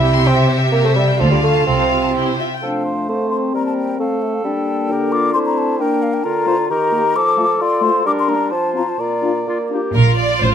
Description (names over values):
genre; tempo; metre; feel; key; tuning
quick classical-period movement for symphony orchestra; 124-136 BPM; 2/4; rubato; F major, Bb major from 6.2 s; A4 = 440 Hz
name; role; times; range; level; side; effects
warm chamber violin section; melody; 0.0-2.4, 10.0-10.5 s; D5 to G5; -26 LUFS; left 2 dB; none
rich chamber violin section; second line; 0.0-2.6, 9.9-10.5 s; G4 to C6; -21 LUFS; left 3 dB; none
mellow bassoon; accompaniment; 0.0-9.9 s; Bb2 to F4; -21 LUFS; right 3 dB; none
rich chamber viola section; accompaniment; 0.0-2.5, 9.9-10.5 s; E4 to G4; -23 LUFS; right 4 dB; none
warm chamber double bass section; bass; 0.0-2.1, 10.0-10.5 s; A1 to D2; -18 LUFS; right 3 dB; none
warm studio cello section; bass; 0.0-2.4, 9.9-10.5 s; A2 to D3; -18 LUFS; equal; none
mellow cor anglais; second line; 2.6-9.7 s; A4 to D5; -24 LUFS; right 4 dB; none
mellow hollow concert flute; second line; 2.6-9.5 s; E5 to D6; -20 LUFS; left 4 dB; none
warm clarinet; second line; 2.6-10.0 s; C4 to A4; -24 LUFS; left 2 dB; none
mellow French horn section; sustained chords; 2.6-9.8 s; A3 to G4; -23 LUFS; left 5 dB; none
room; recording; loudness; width
moderate recital hall reverb, RT60 1.4 s; close, detailed microphones; -14 LUFS; side -8 dB against mid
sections
0.0-2.6 A section; 2.6-9.9 B section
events
none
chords
0.0 C; 0.7 C7; 1.2 Dm; 1.7 F/C; 2.1 C; 2.6 F; 3.5 C5/G; 4.0 F/A; 4.5 Gm; 5.4 D5/A; 5.8 Gm/Bb; 6.2 Bb/D; 6.7 Eb; 7.1 F; 8.0 Gm; 8.5 F; 9.0 Bb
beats
0.28 | 0.73 1.19 | 1.67 2.15 | 2.62 3.09 | 3.55 4.00 | 4.46 4.91 | 5.35 5.80 | 6.25 6.69 | 7.15 7.60 | 8.05 8.51 | 8.99 9.47 | 9.95 10.41